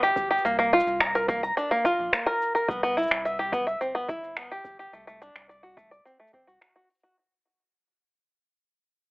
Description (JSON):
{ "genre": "folktronica", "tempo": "107 BPM", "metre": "4/4", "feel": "straight", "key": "unclear", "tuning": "A4 = 440 Hz", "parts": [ { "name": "bluegrass banjo", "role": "arpeggios", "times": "0.0-7.2 s", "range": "A3 to Bb5", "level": "-24 LUFS", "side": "equal", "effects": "low-pass filter, digital delay" }, { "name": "warm sub bass", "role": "bass", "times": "0.0-6.6 s", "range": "G1 to C2", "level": "-44 LUFS", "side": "equal", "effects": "none" }, { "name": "electronic shaker and finger snaps", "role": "drums", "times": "0.0-7.1 s", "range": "none", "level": "-26 LUFS", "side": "equal", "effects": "overdrive" }, { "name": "electronic kick drum", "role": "drums", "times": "0.2-6.4 s", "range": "none", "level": "-34 LUFS", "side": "equal", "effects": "overdrive" } ], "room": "moderate small room reverb, RT60 0.5 s", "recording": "telephone sound", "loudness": "-23 LUFS", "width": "side -25 dB against mid", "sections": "0.0-7.2 A section", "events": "fade-out 0.0-7.2", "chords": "0.4 Bb5/C; 2.7 Cmaj7; 4.9 D7/C" }